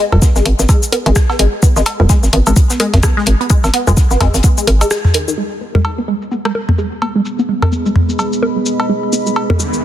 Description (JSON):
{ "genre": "minimal techno", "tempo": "128 BPM", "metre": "4/4", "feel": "swing 59% on 16ths", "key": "G# minor", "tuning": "A4 = 440 Hz", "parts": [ { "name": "resonant blip pluck", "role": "riff", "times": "0.0-9.7 s", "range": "D#3 to B3", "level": "-18 LUFS", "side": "equal", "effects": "phaser, sidechain pumping, digital delay" }, { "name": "hollow knocking FM bass", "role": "bass", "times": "0.1-4.8 s", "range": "D#1 to G#1", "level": "-13 LUFS", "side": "equal", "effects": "sidechain pumping" }, { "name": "techno drum kit", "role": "percussion", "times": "0.1-9.6 s", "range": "bongos, cowbell, rim click, toms", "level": "-16 LUFS", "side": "equal", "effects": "overdrive" }, { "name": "damped 70s drum kit", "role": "drums", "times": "0.2-5.3 s", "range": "hi-hat, snare drum", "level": "-28 LUFS", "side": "left 5 dB", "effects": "sidechain pumping on hats, high-pass filter on hats, high-pass filter on snare, high-pass filter on room" }, { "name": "electronic kick drum", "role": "drums", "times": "0.2-4.5 s", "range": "none", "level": "-11 LUFS", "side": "equal", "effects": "none" }, { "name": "punchy analog drum machine", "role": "drums", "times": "0.2-9.8 s", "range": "hi-hat, rim click, shaker", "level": "-20 LUFS", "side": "left 2 dB", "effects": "low-pass filter on hats, soft clipping on snare, low-pass filter on snare, low-pass filter on perc" }, { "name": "deep dark ambient pad", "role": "texture", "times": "7.1-9.8 s", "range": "B3 to B5", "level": "-18 LUFS", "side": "right 1 dB", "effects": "chorus, built-in reverb, sidechain pumping" }, { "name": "riser", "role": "sound effects", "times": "9.3-9.8 s", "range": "none", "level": "-27 LUFS", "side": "equal", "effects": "none" } ], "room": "light reverb", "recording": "dense, heavily limited modern master", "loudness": "-11 LUFS", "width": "side -12 dB against mid", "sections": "0.0-5.4 A section; 5.4-9.8 B section", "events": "break 4.9-5.4; filter sweep on drum 5.4-9.8; riser 9.3-9.8", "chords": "0.0 N.C.; 5.4 G#m", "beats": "0.22 0.69 1.16 | 1.63 2.10 2.56 3.03 | 3.50 3.97 4.44 4.91 | 5.38 5.85 6.32 6.78 | 7.25 7.72 8.19 8.66 | 9.13 9.60" }